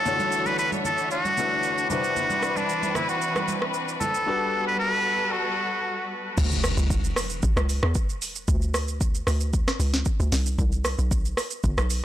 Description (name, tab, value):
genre	amapiano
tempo	114 BPM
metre	4/4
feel	straight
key	unclear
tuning	A4 = 438 Hz
part	trumpet with straight mute	melody	0.0-6.1 s	D4 to B4	-25 LUFS	equal	ping-pong delay
part	warm baby grand piano	accompaniment	0.0-6.4 s	C3 to C#5	-33 LUFS	left 6 dB	none
part	warm symphonic string section	sustained chords	0.0-6.4 s	E3 to C#5	-30 LUFS	left 1 dB	none
part	downlifter and impact	sound effects	0.0-2.2, 6.4-8.5 s	none	-34 LUFS	equal	none
part	afro-pop drum kit	drums	0.1-12.0 s	crash cymbal, hi-hat, kick drum, rim click, shaker, snare drum	-26 LUFS	equal	overdrive, soft clipping on snare
part	congas	percussion	0.1-4.1 s	none	-34 LUFS	right 4 dB	none
part	tight log drum bass	bass	6.4-12.0 s	G1 to E2	-24 LUFS	equal	none
room	small room reverb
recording	blown-out, overdriven recording, overdrive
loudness	-22 LUFS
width	side -12 dB against mid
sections	0.0-6.4 A section; 6.4-12.0 B section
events	drop 6.4-12.0; impact 6.4-8.5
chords	0.0 Dmaj9; 1.9 Cmaj9; 4.3 Gmaj9; 6.4 N.C.